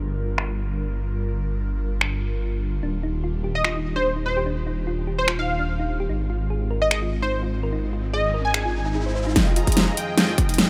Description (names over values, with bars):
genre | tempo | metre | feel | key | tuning
future bass | 147 BPM | 4/4 | swing 54% on 16ths, half-time | unclear | A4 = 440 Hz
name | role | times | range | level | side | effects
airy breathy pad | sustained chords | 0.0-10.7 s | F2 to G5 | -37 LUFS | equal | chorus, vintage 12-bit sampler grit, sidechain pumping
detuned saw bass | bass | 0.0-9.3 s | Eb1 to Ab1 | -28 LUFS | equal | chorus, sidechain pumping
big-room dance drum kit | drums | 0.4-10.7 s | finger snaps, hi-hat, snare drum | -24 LUFS | equal | low-pass filter on toms, low-pass filter on hats, low-pass filter on snare, low-pass filter on room
thumb-piano-like synth pluck | arpeggios | 2.8-10.6 s | D4 to C5 | -34 LUFS | equal | chorus, sidechain pumping, delay
plucky unison lead | melody | 3.6-9.0 s | C5 to Ab5 | -28 LUFS | equal | analog chorus, sidechain pumping
riser | sound effects | 7.7-10.7 s | none | -38 LUFS | equal | none
big bright polysynth | riff | 9.4-10.7 s | F3 to Bb5 | -29 LUFS | equal | chorus, phaser, sidechain pumping
electronic kick drum | drums | 9.4-10.5 s | none | -23 LUFS | equal | none
room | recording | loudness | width
light reverb, digital ambience | none | -24 LUFS | mono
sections
0.0-9.4 A section; 9.4-10.7 B section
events
riser 7.7-9.4; build-up 9.4-10.7; drum fill 9.4-10.7; filter sweep on analog polysynth 9.4-10.7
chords
0.0 Gm7; 2.8 Ebmaj9; 6.1 Ab6; 9.4 Fm9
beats
0.38 0.79 | 1.20 1.60 2.01 2.42 | 2.83 3.24 3.65 4.05 | 4.46 4.87 5.28 5.69 | 6.09 6.50 6.91 7.32 | 7.73 8.14 8.54 8.95 | 9.36 9.77 10.18 10.59